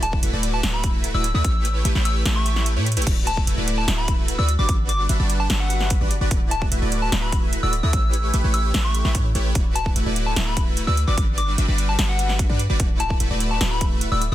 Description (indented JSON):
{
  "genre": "future bass",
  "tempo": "148 BPM",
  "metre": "4/4",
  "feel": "half-time",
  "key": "D major",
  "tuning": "A4 = 440 Hz",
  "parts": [
    { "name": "soft struck synth lead", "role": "melody", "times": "0.0-14.3 s", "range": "F#5 to E6", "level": "-28 LUFS", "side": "left 2 dB", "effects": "chorus, sidechain pumping, tape echo" },
    { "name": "supersaw chords", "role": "riff", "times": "0.0-14.3 s", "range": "G3 to E5", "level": "-26 LUFS", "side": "equal", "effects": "wide subtle chorus, sidechain pumping" },
    { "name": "warm 808-style bass", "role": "bass", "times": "0.0-14.3 s", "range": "D1 to A2", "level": "-22 LUFS", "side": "equal", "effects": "sidechain pumping" },
    { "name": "big-room dance drum kit", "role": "drums", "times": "0.0-14.3 s", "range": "crash cymbal, hi-hat, snare drum", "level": "-26 LUFS", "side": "right 1 dB", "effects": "studio reverb" },
    { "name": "electronic kick drum", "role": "drums", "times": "0.1-13.9 s", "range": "none", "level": "-22 LUFS", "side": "equal", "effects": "studio reverb" }
  ],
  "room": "little or no reverb",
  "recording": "dense, heavily limited modern master",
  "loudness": "-18 LUFS",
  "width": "side -13 dB against mid",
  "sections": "0.0-3.1 A section; 3.1-14.3 A section",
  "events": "drop 0.0-3.1, 3.1-14.3; kick drops out 2.7-3.1; drum fill 2.9",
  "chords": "0.0 D69; 1.4 A9; 3.1 D69; 4.5 Gmaj7; 6.3 D69; 7.9 A9; 9.6 D69; 11.0 Gmaj7; 12.8 D69",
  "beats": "0.23 0.63 1.04 | 1.45 1.85 2.26 2.66 | 3.07 3.47 3.88 4.28 | 4.69 5.09 5.50 5.91 | 6.31 6.71 7.12 7.53 | 7.93 8.34 8.74 9.15 | 9.55 9.96 10.36 10.77 | 11.18 11.58 11.99 12.39 | 12.80 13.20 13.61 14.01"
}